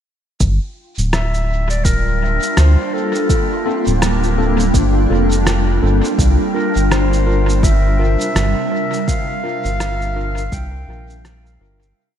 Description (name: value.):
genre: ambient dub.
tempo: 83 BPM.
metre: 4/4.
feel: swing 59% on 16ths.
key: G dorian.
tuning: A4 = 440 Hz.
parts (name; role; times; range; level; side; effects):
granular cloud pad; sustained chords; 1.7-12.0 s; C3 to A5; -21 LUFS; right 1 dB; built-in reverb, analog chorus.
round analog bass; bass; 0.4-11.9 s; D1 to D2; -16 LUFS; equal; tube saturation.
electronic cabasa and rim click; drums; 0.4-11.9 s; none; -24 LUFS; equal; overdrive, studio reverb, dub echo.
electronic kick drum; drums; 0.4-10.7 s; none; -17 LUFS; equal; studio reverb.
wind-like tuned noise texture; texture; 1.6-12.0 s; F4 to G5; -27 LUFS; equal; built-in reverb, analog chorus.
warm clarinet; melody; 1.1-11.6 s; A4 to G5; -24 LUFS; left 1 dB; dub echo.
barky tine electric piano; stabs; 3.7-11.9 s; Bb3 to Bb4; -24 LUFS; left 3 dB; medium stereo tremolo, dub echo.
room: light reverb.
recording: none.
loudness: -14 LUFS.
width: side -9 dB against mid.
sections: 0.4-12.0 groove.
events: fade-out 8.1-12.0.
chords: 0.4 Gm11; 6.2 C9sus4.